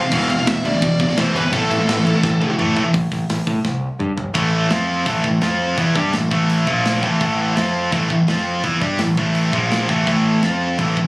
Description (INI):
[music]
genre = heavy metal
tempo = 168 BPM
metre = 4/4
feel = straight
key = A minor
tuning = A4 = 440 Hz
[part]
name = high-gain lead guitar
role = melody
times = 0.0-2.5 s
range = A4 to F5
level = -23 LUFS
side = equal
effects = distortion
[part]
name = fuzz guitar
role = riff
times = 0.0-2.9, 10.1-11.1 s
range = E2 to F4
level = -23 LUFS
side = left 1 dB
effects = distortion
[part]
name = heavy high-gain guitar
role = riff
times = 0.0-11.1 s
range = E2 to G4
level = -27 LUFS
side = left 3 dB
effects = distortion
[part]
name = tight distorted guitar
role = riff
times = 0.0-11.1 s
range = E2 to G4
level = -19 LUFS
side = right 1 dB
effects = distortion
[part]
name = growling picked electric bass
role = bass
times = 0.1-11.1 s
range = E1 to A2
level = -21 LUFS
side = equal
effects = overdrive
[part]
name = tight metal drum kit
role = drums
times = 0.1-11.1 s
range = crash cymbal, hi-hat, kick drum, snare drum, toms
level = -23 LUFS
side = equal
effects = none
[sound]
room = studio reverb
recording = recorded on a phone in the room, club ambience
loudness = -16 LUFS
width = side -25 dB against mid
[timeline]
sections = 0.0-2.9 A section; 2.9-4.4 B section; 4.4-11.1 C section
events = drum fill 2.2-2.9, 3.6-4.4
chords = 0.1 Em; 1.5 A5; 2.9 Am; 4.4 A5; 4.7 F5; 5.1 A5; 5.4 F5; 5.8 A5; 6.7 Bb5; 7.0 A5; 7.6 F5; 7.9 A5; 8.3 F5; 8.6 A5; 9.5 Bb5; 9.9 A5; 10.4 F5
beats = | 0.12 0.47 0.82 1.17 | 1.52 1.88 2.23 2.58 | 2.94 3.29 3.64 4.00 | 4.35 4.71 5.06 5.42 | 5.78 6.13 6.49 6.85 | 7.21 7.57 7.92 8.28 | 8.64 9.00 9.36 9.72 | 10.07 10.43 10.79